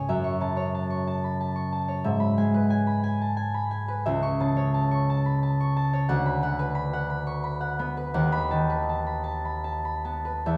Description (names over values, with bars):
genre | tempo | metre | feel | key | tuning
classical, solo harp piece | 50-61 BPM (dotted quarters) | 6/8 | rubato | E major | A4 = 440 Hz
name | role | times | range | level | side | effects
concert harp | solo | 0.0-10.6 s | C#2 to C#6 | -26 LUFS | equal | none
room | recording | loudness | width
wet recital hall reverb, RT60 1.4 s | heard from further back in the room | -26 LUFS | mono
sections
0.0-10.6 A section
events
none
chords
0.1 F#m7; 2.1 E/G#; 4.1 A/C#; 6.1 Bm/D; 8.1 B7/D#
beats
| 0.07 1.06 | 2.06 3.06 | 4.06 5.09 | 6.09 7.09 | 8.14 9.26 | 10.45